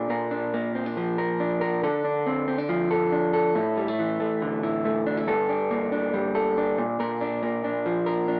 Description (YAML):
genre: indie pop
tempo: 139 BPM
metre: 4/4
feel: straight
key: unclear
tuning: A4 = 440 Hz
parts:
  - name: electric guitar through a small old amp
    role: solo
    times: 0.0-8.4 s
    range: G2 to Bb4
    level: -26 LUFS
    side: equal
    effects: none
room: light reverb, digital ambience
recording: rough home demo mix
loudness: -26 LUFS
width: mono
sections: 0.0-8.4 A section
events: none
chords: 0.0 Bb; 1.8 Dm7; 3.5 Asus4; 5.3 Gmadd9; 6.8 Bb